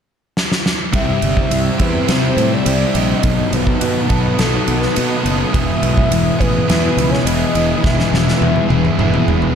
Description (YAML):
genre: rock, shoegaze and dream pop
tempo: 104 BPM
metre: 4/4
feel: straight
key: E major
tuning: A4 = 441 Hz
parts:
  - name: huge arena drum kit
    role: drums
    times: 0.4-9.6 s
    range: kick drum, ride cymbal, snare drum, toms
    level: -19 LUFS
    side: equal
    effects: none
  - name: warm velvety synth lead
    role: melody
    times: 0.9-9.6 s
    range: A4 to E5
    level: -22 LUFS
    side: left 1 dB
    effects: chorus, analog delay
  - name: phased analog pad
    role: sustained chords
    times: 1.4-9.6 s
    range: E4 to E6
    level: -27 LUFS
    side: equal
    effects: phaser, chorus
  - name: overdriven electric guitar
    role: riff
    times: 0.9-9.6 s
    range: B2 to A4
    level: -21 LUFS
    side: right 11 dB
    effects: reverse reverb
  - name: thick fuzz guitar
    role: riff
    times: 0.9-9.6 s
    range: E2 to C4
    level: -20 LUFS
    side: left 10 dB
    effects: distortion, wide subtle chorus
  - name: fuzz fingered electric bass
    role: bass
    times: 0.9-9.5 s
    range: E1 to C3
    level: -20 LUFS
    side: right 1 dB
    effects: overdrive
room: light reverb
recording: dark, warm production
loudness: -13 LUFS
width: side -7 dB against mid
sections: 0.9-9.6 A section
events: drum fill 0.4-0.9, 7.8-9.6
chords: 0.0 N.C.; 0.9 C; 3.2 B7; 5.5 Emaj7